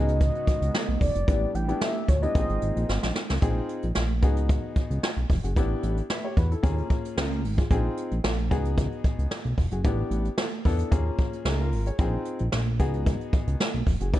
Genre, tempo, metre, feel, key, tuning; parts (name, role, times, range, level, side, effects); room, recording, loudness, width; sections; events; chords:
early-eighties boogie funk; 112 BPM; 4/4; straight; A4 = 437 Hz
mellow horn-like synth lead; melody; 0.0-3.1 s; Db5 to G5; -30 LUFS; left 1 dB; chorus
warm grand piano; accompaniment; 0.0-14.2 s; Bb3 to E5; -32 LUFS; left 3 dB
brassy analog pad; sustained chords; 0.0-3.4 s; Db3 to Gb4; -37 LUFS; right 2 dB; chorus
fat analog bass; bass; 0.0-14.2 s; F1 to E2; -26 LUFS; equal
jazz brush drum kit; drums; 0.1-14.2 s; hi-hat, kick drum, snare drum; -26 LUFS; equal
studio ambience; dark, warm production, nothing above 10.8 kHz; -23 LUFS; side -14 dB against mid
0.0-3.4 A section; 3.4-14.2 B section
drum fill 2.9-3.4
0.0 Db9sus4; 1.3 A9sus4; 2.4 Bb9sus4; 4.2 Db9sus4; 5.6 A9sus4; 6.6 Eb9sus4; 7.7 Bb9sus4; 8.5 Db9sus4; 9.8 A9sus4; 10.9 Eb9sus4; 12.0 Bb9sus4; 12.8 Db9sus4